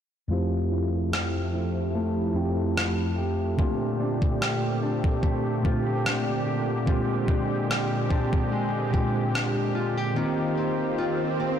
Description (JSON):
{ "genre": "contemporary R&B", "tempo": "73 BPM", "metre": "4/4", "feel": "swing 54% on 16ths", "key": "F major", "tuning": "A4 = 441 Hz", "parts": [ { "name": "mellow tine electric piano", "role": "accompaniment", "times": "0.3-11.6 s", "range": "F2 to G4", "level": "-27 LUFS", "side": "right 1 dB", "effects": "medium stereo tremolo, low-pass filter" }, { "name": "lush unison pad", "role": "sustained chords", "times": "0.3-11.6 s", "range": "Bb2 to G4", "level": "-30 LUFS", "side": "equal", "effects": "chorus, low-pass filter" }, { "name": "nylon-string guitar", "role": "arpeggios", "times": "0.3-11.6 s", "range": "Bb2 to G4", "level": "-31 LUFS", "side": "left 2 dB", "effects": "low-pass filter, ping-pong delay" }, { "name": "clean 12-bit digital drum machine", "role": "drums", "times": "1.1-9.6 s", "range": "kick drum, rim click", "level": "-28 LUFS", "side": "equal", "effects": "none" }, { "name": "swell", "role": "sound effects", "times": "10.1-11.6 s", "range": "none", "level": "-34 LUFS", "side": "equal", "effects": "none" } ], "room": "light reverb, digital ambience", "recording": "blown-out, overdriven recording, overdrive", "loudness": "-23 LUFS", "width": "side -9 dB against mid", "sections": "0.3-11.6 A section", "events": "filter sweep 0.3-11.6; swell 10.1-11.6", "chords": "0.3 Fmaj9; 3.6 Bbmaj13; 6.9 Bb13; 10.2 Eb69", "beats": "| 0.30 1.12 1.95 2.77 | 3.59 4.41 5.23 6.05 | 6.88 7.70 8.52 9.34 | 10.16 10.99" }